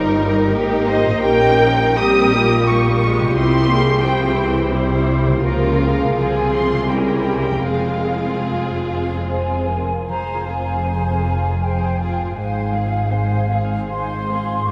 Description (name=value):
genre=classical, slow romantic movement for symphony orchestra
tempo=71-90 BPM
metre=3/4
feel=rubato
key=F minor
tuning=A4 = 442 Hz
part: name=muted studio violin section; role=melody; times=0.0-14.7 s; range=Bb4 to Eb6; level=-26 LUFS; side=equal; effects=none
part: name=muted chamber violin section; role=second line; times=0.0-14.7 s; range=C4 to C5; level=-28 LUFS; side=equal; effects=none
part: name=muted symphonic viola section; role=accompaniment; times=0.0-14.7 s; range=E3 to Ab4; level=-27 LUFS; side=equal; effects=none
part: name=mellow French horn section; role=sustained chords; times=0.0-10.1 s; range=Eb4 to C5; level=-24 LUFS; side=equal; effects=none
part: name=concert harp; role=arpeggios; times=0.0-14.7 s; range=G2 to C6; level=-27 LUFS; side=equal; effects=none
part: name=muted chamber cello section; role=bass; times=0.0-14.7 s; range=F2 to Db3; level=-27 LUFS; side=equal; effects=none
part: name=muted chamber double bass section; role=bass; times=0.0-14.7 s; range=F1 to Db2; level=-26 LUFS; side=equal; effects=none
part: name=hollow flute section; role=second line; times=9.3-14.7 s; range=F5 to Db6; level=-27 LUFS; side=equal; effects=none
room=wet huge ambient reverb, RT60 7.3 s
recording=in a vast, echoing space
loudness=-18 LUFS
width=mono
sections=0.0-10.1 A section; 10.1-14.7 B section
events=none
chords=0.0 Eb/G; 1.2 Gdim/Bb; 3.4 C; 5.4 Bbm/Db; 6.2 Fm/C; 6.9 C7b9; 7.7 Fm; 12.4 Fm/Ab